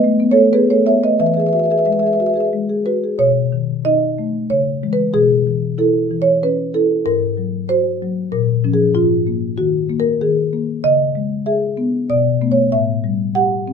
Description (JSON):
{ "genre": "classical, contemporary piece for solo marimba", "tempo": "94 BPM", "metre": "3/4", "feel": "rubato", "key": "unclear", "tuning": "A4 = 440 Hz", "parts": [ { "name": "marimba with soft mallets", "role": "solo", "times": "0.0-13.7 s", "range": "G#2 to F#5", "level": "-14 LUFS", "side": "left 1 dB", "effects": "none" } ], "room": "light reverb", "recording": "minimal, uncompressed stereo recording, lossy compression artefacts", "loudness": "-14 LUFS", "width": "side -6 dB against mid", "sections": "0.0-3.2 A section; 3.2-13.7 B section", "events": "none", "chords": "0.0 F#m11; 1.2 Eadd9; 3.2 B9; 4.5 C#m; 5.1 Bsus24; 7.1 G#9; 8.3 A#m; 9.0 G#sus2; 10.8 C#m7; 12.1 Bm7; 12.7 A7(no3)" }